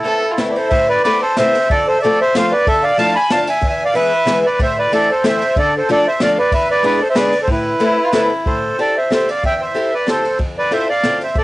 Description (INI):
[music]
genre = musette waltz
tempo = 187 BPM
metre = 3/4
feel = swing 53% on 8ths, rubato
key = A harmonic minor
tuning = A4 = 440 Hz
[part]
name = accordion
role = melody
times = 0.0-11.4 s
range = E4 to B5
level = -14 LUFS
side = right 1 dB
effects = cassette tape
[part]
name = warm violin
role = second line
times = 0.0-0.7, 7.8-8.4 s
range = E4 to A4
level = -20 LUFS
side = equal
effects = cassette tape
[part]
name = picked old ladder-braced acoustic guitar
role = accompaniment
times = 0.0-11.4 s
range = E2 to A4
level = -20 LUFS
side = left 2 dB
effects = cassette tape
[part]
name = jazz brush drum kit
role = drums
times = 0.1-11.4 s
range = kick drum, ride cymbal, snare drum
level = -23 LUFS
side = equal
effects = cassette tape
[sound]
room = light reverb, studio ambience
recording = home recording on cassette, nothing above 10.6 kHz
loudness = -13 LUFS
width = side -18 dB against mid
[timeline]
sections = 0.7-8.5 A section; 8.5-11.4 B section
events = none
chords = 0.0 Amadd9; 1.7 F; 2.7 Dmadd9; 3.6 E; 4.6 Am; 5.6 Dm; 6.5 E7; 7.5 Amadd9; 8.5 Am7; 10.4 Fmaj7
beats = 0.05 0.38 | 0.71 1.04 1.37 | 1.70 2.02 2.35 | 2.67 2.98 3.30 | 3.62 3.94 4.27 | 4.59 4.92 5.24 | 5.56 5.88 6.20 | 6.51 6.83 7.15 | 7.47 7.80 8.13 | 8.46 8.79 9.11 | 9.44 9.76 10.08 | 10.40 10.72 11.04 | 11.35